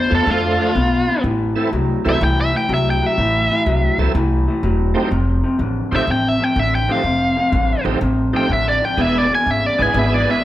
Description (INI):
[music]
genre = blues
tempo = 124 BPM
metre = 4/4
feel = swing 68% on 8ths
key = A minor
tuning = A4 = 440 Hz
[part]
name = biting lead guitar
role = melody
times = 0.0-10.4 s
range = F4 to G#5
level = -19 LUFS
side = equal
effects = overdrive
[part]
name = electric guitar through a small old amp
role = riff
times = 0.0-10.4 s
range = E2 to B3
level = -20 LUFS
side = left 2 dB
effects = none
[part]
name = bright tonewheel organ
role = accompaniment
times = 0.1-10.4 s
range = E3 to A4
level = -23 LUFS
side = right 4 dB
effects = slow rotary speaker, chorus vibrato
[part]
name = upright bass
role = bass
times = 0.1-10.2 s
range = E1 to F2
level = -20 LUFS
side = equal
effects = none
[sound]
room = moderate large studio reverb, RT60 1.4 s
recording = band playing live in one room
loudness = -15 LUFS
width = side -14 dB against mid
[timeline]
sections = 0.0-10.4 A section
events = lead electric guitar solo 0.0-10.4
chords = 0.0 Dm; 1.2 Am; 5.1 F7; 9.0 E7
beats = 0.27 0.75 | 1.24 1.72 2.21 2.69 | 3.17 3.66 4.14 4.63 | 5.11 5.59 6.08 6.56 | 7.04 7.53 8.01 8.50 | 8.98 9.46 9.95 10.43